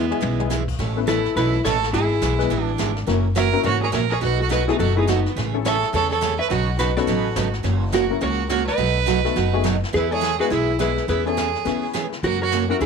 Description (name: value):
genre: country, western swing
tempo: 210 BPM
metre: 4/4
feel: swing 62% on 8ths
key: E major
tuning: A4 = 441 Hz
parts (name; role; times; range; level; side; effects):
- hollow-body jazz guitar; melody; 0.0-12.9 s; B3 to E5; -24 LUFS; left 2 dB; none
- clear fiddle; second line; 0.0-12.9 s; B3 to B4; -25 LUFS; right 12 dB; none
- picked steel-string acoustic guitar; accompaniment; 0.0-12.9 s; B2 to B4; -26 LUFS; right 11 dB; none
- upright bass; bass; 0.0-12.9 s; F#1 to C#3; -24 LUFS; left 1 dB; none
- honky-tonk upright piano; accompaniment; 0.1-12.8 s; G#3 to B4; -26 LUFS; left 15 dB; none
- jazz brush drum kit; drums; 0.1-12.9 s; brushed snare drum, crash cymbal, hi-hat, kick drum, snare drum, toms; -31 LUFS; left 3 dB; none
room: light reverb, small room ambience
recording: 1960s-style stereo with parts hard left and right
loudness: -18 LUFS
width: side -6 dB against mid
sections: 0.8-9.9 A section; 9.9-12.9 B section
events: drum fill 0.0-0.5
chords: 0.0 E; 0.8 Aadd9; 1.9 E/G#; 3.1 F#7; 4.2 B7; 5.4 Amaj7; 6.5 Badd9; 7.6 F#7; 8.8 B7; 9.9 E; 11.1 C#m7/E; 12.2 F#7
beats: 0.22 0.51 | 0.79 1.08 1.36 1.65 | 1.93 2.22 2.50 2.79 | 3.08 3.36 3.65 3.93 | 4.22 4.50 4.79 5.07 | 5.36 5.64 5.93 6.21 | 6.50 6.79 7.07 7.36 | 7.64 7.93 8.22 8.50 | 8.79 9.08 9.36 9.65 | 9.94 10.22 10.51 10.80 | 11.08 11.37 11.66 11.95 | 12.23 12.52 12.81